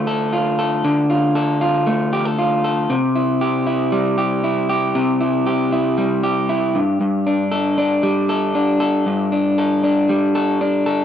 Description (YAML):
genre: indie pop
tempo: 117 BPM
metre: 4/4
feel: straight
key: unclear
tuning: A4 = 440 Hz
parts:
  - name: electric guitar through a small old amp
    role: solo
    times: 0.0-11.0 s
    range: G2 to A4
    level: -16 LUFS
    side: equal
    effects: slapback echo
room: light reverb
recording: recorded outdoors, with no room sound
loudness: -16 LUFS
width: side -9 dB against mid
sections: 0.0-11.0 A section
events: none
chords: 0.0 Dm; 2.9 C; 6.7 Gsus2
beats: 0.33 | 0.84 1.35 1.86 2.38 | 2.89 3.40 3.92 4.43 | 4.94 5.46 5.97 6.49 | 7.00 7.52 8.03 8.55 | 9.06 9.58 10.09 10.61